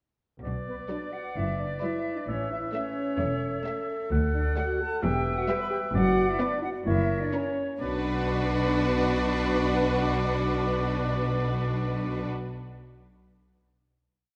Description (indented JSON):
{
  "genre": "cinematic, playful, whimsical film cue",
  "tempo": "130 BPM",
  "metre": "4/4",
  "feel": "straight",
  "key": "B minor",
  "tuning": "A4 = 444 Hz",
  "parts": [
    { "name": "clear oboe", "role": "second line", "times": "0.4-12.3 s", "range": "C#5 to F#5", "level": "-37 LUFS", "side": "equal", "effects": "none" },
    { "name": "warm clarinet", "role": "second line", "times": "0.4-12.3 s", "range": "A4 to B4", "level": "-40 LUFS", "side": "equal", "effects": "none" },
    { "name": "clear studio cello section", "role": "bass", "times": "0.4-12.3 s", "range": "D2 to B2", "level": "-34 LUFS", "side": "equal", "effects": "none" },
    { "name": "rich studio double bass section", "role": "bass", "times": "0.4-12.3 s", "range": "E1 to D2", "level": "-33 LUFS", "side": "equal", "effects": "none" },
    { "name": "small flute group", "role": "second line", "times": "0.7-12.3 s", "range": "B4 to B5", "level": "-39 LUFS", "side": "equal", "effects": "none" },
    { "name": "mellow French horn section", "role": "sustained chords", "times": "0.7-12.3 s", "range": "B3 to B4", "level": "-35 LUFS", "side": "equal", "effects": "none" },
    { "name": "warm studio violin section", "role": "melody", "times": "0.9-12.3 s", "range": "B4 to F#5", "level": "-39 LUFS", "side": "equal", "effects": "none" },
    { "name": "rich studio violin section", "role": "second line", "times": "0.9-12.3 s", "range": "F#4 to E5", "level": "-40 LUFS", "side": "equal", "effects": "none" },
    { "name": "rich studio viola section", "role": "accompaniment", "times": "0.9-12.3 s", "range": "F#3 to D4", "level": "-35 LUFS", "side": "equal", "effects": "none" }
  ],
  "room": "wet scoring stage reverb, RT60 1.9 s",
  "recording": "none",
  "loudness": "-28 LUFS",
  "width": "mono",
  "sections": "0.4-7.8 A section; 7.8-11.5 final chord",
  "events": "none",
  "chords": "0.4 Bm; 2.3 A; 4.1 D; 5.0 Em; 5.9 Bm/F#; 6.9 F#; 7.8 Bm"
}